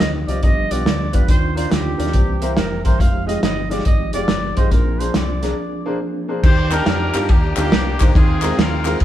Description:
uptempo gospel; 140 BPM; 4/4; swing 65% on 8ths; Eb major; A4 = 440 Hz
mellow trumpet; melody; 0.0-6.0 s; G4 to F5; -26 LUFS; right 2 dB
clear upright piano; accompaniment; 0.0-8.9 s; G2 to Eb5; -25 LUFS; left 1 dB
percussive tonewheel organ; sustained chords; 0.0-9.0 s; Eb3 to D6; -27 LUFS; equal; fast rotary speaker, chorus vibrato
fingered electric bass; bass; 0.0-9.0 s; F1 to G2; -23 LUFS; equal
warm soul drum kit; drums; 0.0-9.0 s; crash cymbal, hi-hat, kick drum, ride cymbal, snare drum; -17 LUFS; equal
mellow horn section; melody; 6.4-9.0 s; Bb3 to C5; -22 LUFS; left 2 dB
group handclap; percussion; 6.7-8.9 s; -30 LUFS; left 4 dB
moderate stone room reverb, RT60 1.5 s; band playing live in one room; -15 LUFS; side -12 dB against mid
0.0-6.4 A section; 6.4-9.0 B section
break 5.6-6.4
0.4 G7; 1.3 Cm11/Eb; 2.1 C7; 3.0 Fm9; 4.7 Bb9; 6.4 Ebmaj7; 8.2 Ab69/Eb
0.00 0.43 0.86 | 1.29 1.72 2.15 2.58 | 3.00 3.43 3.86 4.29 | 4.72 5.15 5.58 6.01 | 6.44 6.87 7.29 7.72 | 8.15 8.58 9.01

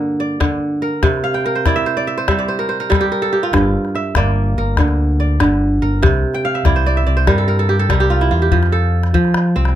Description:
west african traditional, West African string and xylophone music; 96 BPM (dotted quarters); 12/8; straight; A4 = 440 Hz
kora; arpeggios; 0.0-9.8 s; G2 to G5; -17 LUFS; right 2 dB
calabash; percussion; 0.4-9.8 s; -18 LUFS; left 3 dB
overdriven fingered electric bass; bass; 3.5-9.8 s; G1 to F3; -16 LUFS; equal
little or no reverb; close, detailed microphones; -14 LUFS; side -11 dB against mid
0.0-8.5 A section; 8.5-9.8 B section
kora fill 1.2-3.5, 6.3-8.5
0.0 Gm; 1.0 C; 3.5 Gm; 6.0 C; 8.5 F
0.41 | 1.03 1.66 2.28 2.91 | 3.53 4.16 4.78 5.40 | 6.03 6.65 7.27 7.90 | 8.52 9.14

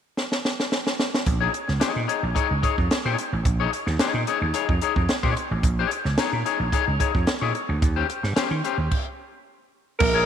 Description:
funk; 110 BPM; 4/4; straight; Bb dorian; A4 = 441 Hz
compact cocktail drum kit; drums; 0.2-10.1 s; crash cymbal, hi-hat, kick drum, snare drum; -24 LUFS; right 1 dB
electric guitar at the edge of break-up; accompaniment; 1.3-10.3 s; Db4 to Db5; -25 LUFS; left 8 dB; spring reverb
vintage slap bass; bass; 1.3-10.3 s; A1 to Eb3; -25 LUFS; right 2 dB
growling alto saxophone; melody; 10.0-10.3 s; Bb4; -19 LUFS; right 2 dB
electric guitar at the edge of break-up; riff; 10.0-10.2 s; Bb3; -29 LUFS; right 14 dB
moderate echo chamber reverb, RT60 1.8 s; 1960s-style stereo with parts hard left and right; -21 LUFS; side -8 dB against mid
0.0-1.3 A section; 1.3-10.0 B section
drum fill 0.2-1.3; stop 8.9-10.0
0.0 N.C.; 1.3 Bbm7; 7.8 Eb6
0.17 0.71 | 1.26 1.81 2.36 2.90 | 3.45 4.00 4.54 5.09 | 5.64 6.18 6.73 7.28 | 7.82 8.37 8.91 9.46 | 10.01

